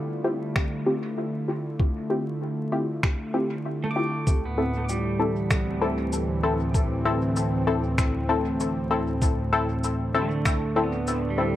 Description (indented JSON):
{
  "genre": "ambient dub",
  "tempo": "97 BPM",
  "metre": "4/4",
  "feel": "swing 59% on 16ths",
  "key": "unclear",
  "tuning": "A4 = 440 Hz",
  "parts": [
    { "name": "warm analog pad", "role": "sustained chords", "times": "0.0-11.6 s", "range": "D2 to F4", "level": "-27 LUFS", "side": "equal", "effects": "chorus" },
    { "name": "filtered dub chord stab", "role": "stabs", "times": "0.2-11.6 s", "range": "C4 to A4", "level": "-27 LUFS", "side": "left 3 dB", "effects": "chorus, dub echo" },
    { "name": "electronic finger snaps and shaker", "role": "drums", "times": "0.6-11.2 s", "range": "none", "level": "-32 LUFS", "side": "equal", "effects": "dub echo" },
    { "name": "electronic kick drum", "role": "drums", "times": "0.6-10.6 s", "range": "none", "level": "-24 LUFS", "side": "equal", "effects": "none" },
    { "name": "pedal steel guitar", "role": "arpeggios", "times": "3.8-6.4, 10.2-11.6 s", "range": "G3 to D6", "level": "-32 LUFS", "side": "right 3 dB", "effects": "low-pass filter, dub echo" }
  ],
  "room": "light reverb",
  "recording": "echo-heavy mix, vinyl crackle",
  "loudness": "-23 LUFS",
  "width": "side -13 dB against mid",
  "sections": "0.0-11.6 A section",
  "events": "filter sweep on pedal steel guitar 0.0-11.6",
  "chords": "0.0 Dm11; 4.3 Am/D"
}